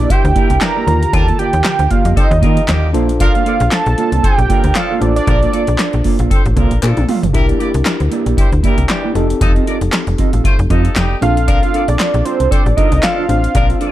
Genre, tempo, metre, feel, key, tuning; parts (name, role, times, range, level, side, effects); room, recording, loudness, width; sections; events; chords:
early-eighties boogie funk; 116 BPM; 4/4; swing 56% on 16ths; A4 = 440 Hz
fat analog lead; melody; 0.0-6.2, 11.2-13.8 s; C5 to Bb5; -17 LUFS; right 3 dB; chorus
tine electric piano; accompaniment; 0.0-13.9 s; D3 to C5; -23 LUFS; left 4 dB
mellow electric guitar; riff; 0.0-13.9 s; Bb3 to F5; -22 LUFS; right 8 dB; lush chorus
slap-like FM bass; bass; 0.0-13.7 s; F1 to Eb3; -15 LUFS; equal
clear horn section; second line; 0.1-13.9 s; D3 to D5; -24 LUFS; left 1 dB
electro analog drum machine; drums; 0.1-13.9 s; handclaps, hi-hat, kick drum, snare drum, toms; -16 LUFS; equal
group handclap; percussion; 0.6-13.2 s; -27 LUFS; left 4 dB
little or no reverb; dark, warm production; -11 LUFS; side -14 dB against mid
0.0-13.9 A section
drum fill 6.8-7.3
0.0 C9 (rootless); 0.9 Ebmaj9; 2.9 Bbmaj7; 7.3 C9; 9.2 F7; 11.2 Bbmaj7